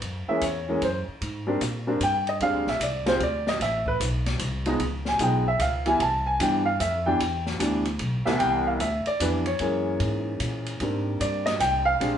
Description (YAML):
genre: jazz piano trio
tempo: 150 BPM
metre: 3/4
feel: swing 65% on 8ths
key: unclear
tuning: A4 = 440 Hz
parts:
  - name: upright bass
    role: bass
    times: 0.0-12.2 s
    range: A1 to Bb2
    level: -30 LUFS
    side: equal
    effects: none
  - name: open jazz drum kit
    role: drums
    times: 0.0-12.1 s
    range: hi-hat, kick drum, ride cymbal, snare drum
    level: -33 LUFS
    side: left 1 dB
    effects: none
  - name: warm upright piano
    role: melody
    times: 0.3-12.2 s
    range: C2 to A5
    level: -24 LUFS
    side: equal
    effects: none
room: wet studio reverb, RT60 0.7 s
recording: band playing live in one room, nothing above 10.8 kHz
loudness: -23 LUFS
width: side -9 dB against mid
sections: 0.0-8.4 A section; 8.4-12.2 B section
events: upright piano solo 0.0-8.4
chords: 0.0 F#9; 1.2 Abmaj9#11; 2.4 Bb13 (rootless); 3.6 Amadd9; 4.8 Db7; 6.0 Cmaj9; 9.6 F#9; 10.8 Abmaj9#11